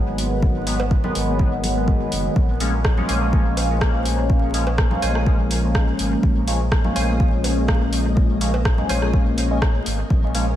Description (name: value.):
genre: dub techno.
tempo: 124 BPM.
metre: 4/4.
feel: swing 53% on 16ths.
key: unclear.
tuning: A4 = 438 Hz.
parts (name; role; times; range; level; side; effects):
resonant sweep polysynth; stabs; 0.0-10.4 s; D#3 to C#4; -23 LUFS; left 1 dB; chorus, phaser, sidechain pumping, dub echo.
pure sine sub bass; bass; 0.0-10.6 s; F#1 to A#1; -23 LUFS; equal; sidechain pumping.
flickering grainy texture; texture; 0.0-10.6 s; G#3 to D#5; -33 LUFS; left 2 dB; built-in reverb, lush chorus, sidechain pumping.
deep house drum kit; drums; 0.2-10.4 s; hi-hat, rim click; -28 LUFS; equal; dub echo.
electronic kick drum; drums; 0.4-10.2 s; none; -19 LUFS; equal; none.
congas and cowbell; percussion; 0.4-10.2 s; none; -33 LUFS; equal; none.
wavetable chord stab; riff; 3.1-9.0 s; B#4 to G#5; -32 LUFS; right 1 dB; sidechain pumping, dub echo.
room: light reverb.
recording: vinyl crackle.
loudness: -17 LUFS.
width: side -12 dB against mid.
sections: 0.0-10.6 A section.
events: none.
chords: 0.0 G#m7; 2.4 A#m7.